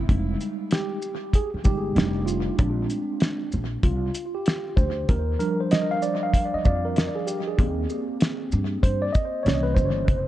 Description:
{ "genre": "hip hop, jazz-hop", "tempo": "96 BPM", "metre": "4/4", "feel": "swing 64% on 16ths", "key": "F dorian", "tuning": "A4 = 441 Hz", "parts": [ { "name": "mellow tine electric piano", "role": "accompaniment", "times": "0.0-10.3 s", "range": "E3 to F5", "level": "-26 LUFS", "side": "right 1 dB", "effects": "medium stereo tremolo, dub echo" }, { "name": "upright bass", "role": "bass", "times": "0.0-10.3 s", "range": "F1 to G2", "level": "-26 LUFS", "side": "equal", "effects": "none" }, { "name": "cloth-damped thuddy drum kit", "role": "drums", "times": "0.1-10.3 s", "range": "hi-hat, kick drum, shaker, snare drum", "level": "-23 LUFS", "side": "equal", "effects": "vintage 12-bit sampler grit, dub echo" } ], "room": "light reverb, small room reverb", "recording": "echo-heavy mix, cassette tape", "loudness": "-22 LUFS", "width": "side -14 dB against mid", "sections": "0.1-10.3 A section", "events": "tine electric piano solo 0.1-10.3", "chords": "0.1 Fm9; 2.0 F13; 2.6 Bb9; 5.1 Ebmaj7; 7.6 Eb6; 9.5 C7b9", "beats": "| 0.08 0.71 1.33 1.96 | 2.58 3.21 3.83 4.46 | 5.08 5.71 6.33 6.96 | 7.58 8.21 8.83 9.46 | 10.08" }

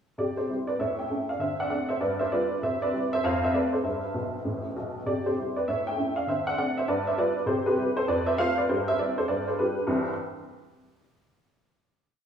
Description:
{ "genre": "jazz, stride piano", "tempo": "198 BPM", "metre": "4/4", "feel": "swing 62% on 8ths", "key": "C major", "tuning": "A4 = 440 Hz", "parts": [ { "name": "honky-tonk upright piano", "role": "solo", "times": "0.2-10.1 s", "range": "A1 to G5", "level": "-25 LUFS", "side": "equal", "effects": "none" } ], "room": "wet large studio reverb, RT60 1.3 s", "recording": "band playing live in one room, small room ambience", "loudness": "-25 LUFS", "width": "side -8 dB against mid", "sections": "0.2-9.9 A section; 9.9-11.1 final chord", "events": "honky-tonk piano fill 4.1-5.0", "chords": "0.2 C; 0.8 A7; 1.4 D5; 2.0 G7; 2.6 C; 3.2 F; 3.8 C/G; 4.4 Amadd9; 5.0 C; 5.7 A7; 6.3 D5; 6.9 G7; 7.5 C; 8.1 F; 8.7 C/G; 9.3 G7; 9.9 C", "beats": "| 0.18 0.48 0.79 1.09 | 1.40 1.70 2.01 2.31 | 2.62 2.92 3.23 3.53 | 3.84 4.14 4.44 4.75 | 5.05 5.35 5.66 5.96 | 6.26 6.57 6.87 7.17 | 7.47 7.77 8.08 8.38 | 8.68 8.98 9.29 9.59 | 9.89" }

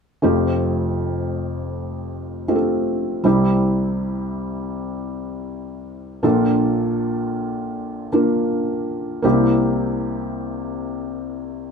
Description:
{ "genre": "pop", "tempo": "80 BPM", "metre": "4/4", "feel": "straight", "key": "F major", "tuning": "A4 = 440 Hz", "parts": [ { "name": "felt-muted upright piano", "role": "accompaniment", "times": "0.2-11.7 s", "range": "F1 to Bb4", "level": "-19 LUFS", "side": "equal", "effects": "none" } ], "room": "wet studio reverb, RT60 0.6 s", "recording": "band playing live in one room", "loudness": "-19 LUFS", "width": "side -6 dB against mid", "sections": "0.2-11.7 A section", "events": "none", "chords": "0.2 Fadd9; 3.2 C; 6.2 Bbmaj7; 9.2 C7", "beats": "| 0.24 0.99 1.74 2.49 | 3.24 3.99 4.74 5.49 | 6.24 6.99 7.74 8.49 | 9.24 9.99 10.74 11.49" }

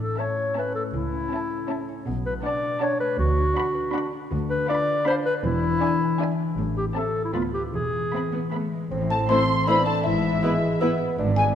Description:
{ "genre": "cinematic, playful, whimsical film cue", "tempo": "159 BPM", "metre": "3/4", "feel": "straight", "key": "A minor from 4.3 s", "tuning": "A4 = 440 Hz", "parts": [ { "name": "warm clarinet", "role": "second line", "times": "0.0-11.0 s", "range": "E4 to D5", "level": "-26 LUFS", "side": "left 1 dB", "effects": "none" }, { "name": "concert harp", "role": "arpeggios", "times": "0.0-11.6 s", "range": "G#2 to B5", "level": "-30 LUFS", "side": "left 5 dB", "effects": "none" }, { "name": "muted studio cello section", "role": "bass", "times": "0.0-11.5 s", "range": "D2 to C4", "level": "-34 LUFS", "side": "right 2 dB", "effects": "none" }, { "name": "muted studio double bass section", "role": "bass", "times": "0.0-11.5 s", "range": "E1 to D2", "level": "-30 LUFS", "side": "right 3 dB", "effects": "none" }, { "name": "muted studio violin section", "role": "melody", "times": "0.2-10.9 s", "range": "B4 to B5", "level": "-34 LUFS", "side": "left 2 dB", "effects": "none" }, { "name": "muted studio violin section", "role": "second line", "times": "0.2-11.5 s", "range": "E5 to C6", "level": "-32 LUFS", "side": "left 1 dB", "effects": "none" }, { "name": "muted studio viola section", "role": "accompaniment", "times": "0.2-10.9 s", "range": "A3 to E4", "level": "-32 LUFS", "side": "right 3 dB", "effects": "none" }, { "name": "mellow bassoon", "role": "accompaniment", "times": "8.9-11.6 s", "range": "G#3 to E4", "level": "-28 LUFS", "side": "right 2 dB", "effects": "none" }, { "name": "xylophone with soft rubber mallets", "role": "melody", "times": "9.1-11.5 s", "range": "E5 to C6", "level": "-28 LUFS", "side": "left 4 dB", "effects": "none" }, { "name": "concert flute", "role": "second line", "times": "9.1-11.4 s", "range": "E5 to C6", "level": "-29 LUFS", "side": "equal", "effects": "none" }, { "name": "mellow French horn section", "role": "sustained chords", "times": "9.1-11.5 s", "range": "E3 to C4", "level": "-27 LUFS", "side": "left 2 dB", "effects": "none" }, { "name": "warm oboe", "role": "second line", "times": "9.3-10.9 s", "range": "E5", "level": "-37 LUFS", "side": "right 1 dB", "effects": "none" } ], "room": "wet concert hall reverb, RT60 2.3 s", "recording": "none", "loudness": "-22 LUFS", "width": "side -9 dB against mid", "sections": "0.0-8.9 A section; 8.9-11.6 B section", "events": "none", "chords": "0.0 A; 0.9 A/C#; 2.1 Bm7; 3.2 Bm/D; 4.3 Bdim/D; 5.4 E7; 6.6 Am; 7.3 Bdim/D; 7.7 E; 8.9 Am; 10.1 E/G#", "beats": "0.19 0.56 | 0.94 1.32 1.69 | 2.07 2.44 2.82 | 3.19 3.57 3.94 | 4.32 4.69 5.07 | 5.45 5.82 6.20 | 6.58 6.96 7.34 | 7.74 8.13 8.53 | 8.92 9.30 9.68 | 10.06 10.44 10.81 | 11.19" }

